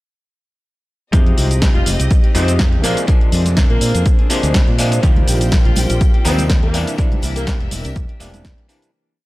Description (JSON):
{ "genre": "filtered disco house", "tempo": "123 BPM", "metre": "4/4", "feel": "swing 55% on 16ths", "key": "F dorian", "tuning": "A4 = 439 Hz", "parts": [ { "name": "overdriven clav", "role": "accompaniment", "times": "1.1-8.9 s", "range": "C3 to G4", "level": "-23 LUFS", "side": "equal", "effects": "phaser, sidechain pumping" }, { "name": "warm studio string section", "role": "sustained chords", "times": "1.1-8.9 s", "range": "D4 to G5", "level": "-29 LUFS", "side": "equal", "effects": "sidechain pumping" }, { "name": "direct-recorded clean electric guitar", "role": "riff", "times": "1.1-9.3 s", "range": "E3 to Ab4", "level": "-29 LUFS", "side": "left 4 dB", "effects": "sidechain pumping" }, { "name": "fingered electric bass", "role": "bass", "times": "1.1-8.5 s", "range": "E1 to Bb2", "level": "-18 LUFS", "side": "equal", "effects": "sidechain pumping" }, { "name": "electronic kick drum", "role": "drums", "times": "1.1-8.6 s", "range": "none", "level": "-14 LUFS", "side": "equal", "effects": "none" }, { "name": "punchy analog drum machine", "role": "drums", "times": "1.1-8.9 s", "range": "hi-hat, shaker, snare drum", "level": "-23 LUFS", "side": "equal", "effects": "sidechain pumping on hats, sidechain pumping on perc" }, { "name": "mellow horn section", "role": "melody", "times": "1.8-7.6 s", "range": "C3 to F4", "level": "-25 LUFS", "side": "equal", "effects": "sidechain pumping, tape echo" }, { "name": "tambourine and congas", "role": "percussion", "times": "5.0-8.9 s", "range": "none", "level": "-28 LUFS", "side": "right 2 dB", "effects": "none" } ], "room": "digital ambience", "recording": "dry, gritty hardware recording", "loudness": "-12 LUFS", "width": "side -19 dB against mid", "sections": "1.1-8.9 drop", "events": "drop 1.1-8.9; fade-out 6.3-8.9", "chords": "1.1 Fm9; 2.8 Bb9; 5.0 Eb69; 6.7 C9", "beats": "| 1.13 1.62 2.11 2.59 | 3.08 3.57 4.06 4.54 | 5.03 5.52 6.01 6.50 | 6.98 7.47 7.96 8.45" }